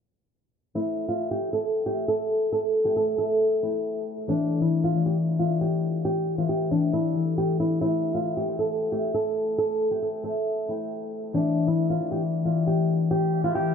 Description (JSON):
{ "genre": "hip hop", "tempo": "136 BPM", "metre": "4/4", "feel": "half-time", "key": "A minor", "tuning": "A4 = 437 Hz", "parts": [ { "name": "concert harp", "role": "accompaniment", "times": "0.7-13.7 s", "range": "E3 to G5", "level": "-27 LUFS", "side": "left 4 dB", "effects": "none" }, { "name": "flamenco guitar", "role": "melody", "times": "0.8-13.7 s", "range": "D4 to A4", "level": "-25 LUFS", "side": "right 1 dB", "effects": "none" } ], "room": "moderate huge ambient reverb, RT60 6.9 s", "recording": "low-pass filter, nothing above 10.6 kHz", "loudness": "-23 LUFS", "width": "side -7 dB against mid", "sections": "0.8-13.7 A section", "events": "filter sweep 0.8-13.7", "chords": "0.8 Am; 4.3 Em7; 7.8 Am; 11.3 Em7", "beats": "| 0.76 1.20 1.64 2.08 | 2.52 2.96 3.40 3.85 | 4.29 4.73 5.17 5.61 | 6.05 6.49 6.93 7.38 | 7.82 8.26 8.70 9.14 | 9.58 10.02 10.46 10.90 | 11.35 11.79 12.23 12.67 | 13.11 13.55" }